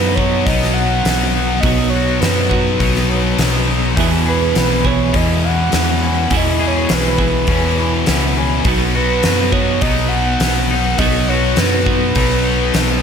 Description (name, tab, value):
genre	rock, shoegaze and dream pop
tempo	103 BPM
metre	4/4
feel	straight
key	B major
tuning	A4 = 440 Hz
part	breathy flute-like synth lead	melody	0.0-13.0 s	B4 to F#5	-21 LUFS	right 1 dB	chorus, slapback echo
part	twangy electric guitar	arpeggios	0.0-13.0 s	E3 to G#4	-25 LUFS	left 3 dB	lush chorus, slapback echo
part	distorted electric guitar	riff	0.0-13.0 s	E2 to B3	-20 LUFS	equal	overdrive
part	overdriven semi-hollow guitar	riff	0.0-13.0 s	E2 to G#4	-23 LUFS	right 13 dB	reverse reverb
part	thick fuzz guitar	riff	0.0-13.0 s	E2 to B3	-22 LUFS	left 10 dB	distortion, ensemble chorus
part	vintage muted fingered electric bass	bass	0.0-13.0 s	B1 to F#2	-19 LUFS	equal	none
part	huge arena drum kit	drums	0.2-12.9 s	hi-hat, kick drum, snare drum	-20 LUFS	equal	none
room	small room ambience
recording	none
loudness	-13 LUFS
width	side -7 dB against mid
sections	0.0-13.0 A section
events	none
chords	0.0 B; 4.0 E6; 8.7 B